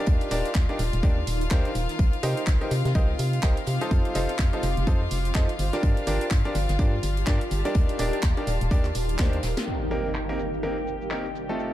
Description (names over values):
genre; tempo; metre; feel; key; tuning
piano house; 125 BPM; 4/4; swing 59% on 16ths; C dorian; A4 = 440 Hz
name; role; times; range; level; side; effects
bright chamber violin section; sustained chords; 0.0-11.7 s; F4 to G5; -35 LUFS; left 4 dB; sidechain pumping, low-pass filter
bright baby grand piano; riff; 0.0-11.7 s; A3 to Eb5; -30 LUFS; equal; sidechain pumping, tape echo
granular cloud pad; texture; 0.0-11.7 s; C4 to D6; -34 LUFS; equal; built-in reverb, sidechain pumping
organ-like FM bass; bass; 0.1-9.5 s; Eb1 to C3; -26 LUFS; equal; sidechain pumping
big rock drum kit; drums; 0.1-9.7 s; hi-hat, snare drum; -43 LUFS; left 3 dB; none
electronic kick drum; drums; 0.1-9.3 s; none; -22 LUFS; equal; none
house drum kit; drums; 0.2-11.7 s; handclaps, hi-hat, shaker, snare drum; -35 LUFS; right 1 dB; low-pass filter on hats, low-pass filter on snare, low-pass filter on perc, low-pass filter on room
impact; sound effects; 9.7-11.6 s; none; -34 LUFS; equal; none
room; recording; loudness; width
light reverb, studio reverb; echo-heavy mix; -22 LUFS; side -13 dB against mid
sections
0.0-9.7 A section; 9.7-11.7 B section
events
drum fill 9.2-9.7; band accent 9.6; impact 9.7-11.6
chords
0.1 Ebmaj7; 2.0 Cm7; 3.9 F7; 5.6 Gm7; 7.8 Ebmaj7; 9.7 Cm7